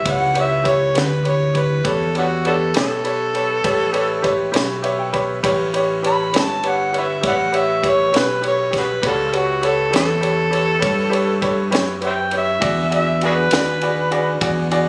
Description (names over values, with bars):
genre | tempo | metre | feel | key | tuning
slow blues | 67 BPM (dotted quarters) | 12/8 | straight | A mixolydian | A4 = 441 Hz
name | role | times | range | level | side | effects
overdriven harmonica | melody | 0.0-14.4 s | B3 to B5 | -22 LUFS | equal | none
mellow tonewheel organ | sustained chords | 0.0-14.9 s | D4 to F5 | -32 LUFS | equal | none
deep dub fingered electric bass | bass | 0.0-14.9 s | G1 to G2 | -27 LUFS | equal | none
clear upright piano | accompaniment | 0.1-14.9 s | F#4 to B5 | -24 LUFS | equal | none
compact cocktail drum kit | drums | 0.1-14.9 s | kick drum, ride cymbal, snare drum | -28 LUFS | equal | none
room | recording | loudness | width
light reverb | recorded on a phone in the room, club reverb, compression | -18 LUFS | mono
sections
0.0-14.9 A section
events
harmonica solo 0.0-14.9; upright piano fill 4.5-5.4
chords
0.0 A7; 12.6 E7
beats
0.06 0.96 | 1.85 2.75 3.65 4.55 | 5.45 6.34 7.24 8.14 | 9.04 9.93 10.83 11.73 | 12.62 13.52 14.42